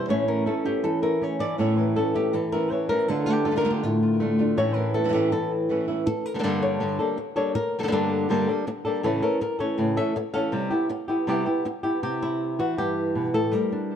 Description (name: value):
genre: flamenco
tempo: 161 BPM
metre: 4/4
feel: straight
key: A phrygian dominant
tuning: A4 = 442 Hz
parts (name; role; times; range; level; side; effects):
- flamenco guitar; melody; 0.0-14.0 s; G2 to F5; -23 LUFS; left 1 dB; plate reverb
- flamenco guitar; stabs; 0.0-6.1 s; A2 to F4; -29 LUFS; right 4 dB; none
room: moderate stone room reverb, RT60 1.0 s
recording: dark, warm production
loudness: -22 LUFS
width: side -8 dB against mid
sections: 0.0-6.1 A section; 6.1-12.0 B section; 12.0-14.0 C section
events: nylon-string guitar solo 0.0-6.1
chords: 0.1 A; 3.1 Dm; 4.6 A; 6.1 Gmadd9; 9.0 A; 10.5 Cmaj7; 12.0 C